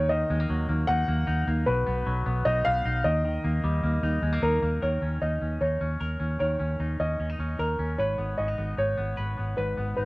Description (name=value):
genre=jangly indie pop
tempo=152 BPM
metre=4/4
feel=straight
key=Eb minor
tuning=A4 = 440 Hz
part: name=warm upright piano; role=melody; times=0.0-10.1 s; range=Bb4 to Gb5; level=-28 LUFS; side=equal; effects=none
part: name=semi-hollow electric guitar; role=arpeggios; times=0.0-10.1 s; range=Ab2 to Cb5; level=-33 LUFS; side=left 1 dB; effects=cassette tape
part: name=vintage muted fingered electric bass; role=bass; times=0.0-10.1 s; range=Ab1 to Eb2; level=-27 LUFS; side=equal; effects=none
room=light reverb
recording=home recording on cassette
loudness=-24 LUFS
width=side -22 dB against mid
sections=0.0-4.8 A section; 4.8-10.1 B section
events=none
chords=0.0 Ebm; 1.7 B; 3.0 Eb; 4.8 Eb5; 8.0 Abm